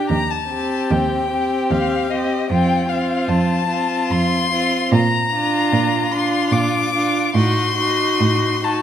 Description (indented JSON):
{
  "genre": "classical, slow romantic movement for string quartet",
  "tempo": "74 BPM",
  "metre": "3/4",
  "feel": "rubato",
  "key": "Bb major",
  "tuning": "A4 = 440 Hz",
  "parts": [
    { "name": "rich violin", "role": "melody", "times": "0.0-8.8 s", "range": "Eb5 to D6", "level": "-21 LUFS", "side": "left 5 dB", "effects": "none" },
    { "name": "rich violin", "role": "second line", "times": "0.0-8.8 s", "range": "F4 to G4", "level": "-23 LUFS", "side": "left 2 dB", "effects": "none" },
    { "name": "rich viola", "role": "accompaniment", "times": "0.0-8.8 s", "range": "C4 to Eb4", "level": "-23 LUFS", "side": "right 2 dB", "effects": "none" },
    { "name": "rich cello", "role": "bass", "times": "0.1-8.8 s", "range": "Eb2 to Bb2", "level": "-21 LUFS", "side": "right 3 dB", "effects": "none" }
  ],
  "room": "wet recital hall reverb, RT60 1.5 s",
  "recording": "none",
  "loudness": "-16 LUFS",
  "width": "side -9 dB against mid",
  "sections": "0.0-8.8 A section",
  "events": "none",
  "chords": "0.1 Cm/Eb; 2.5 F; 4.9 Bb; 7.3 Adim7"
}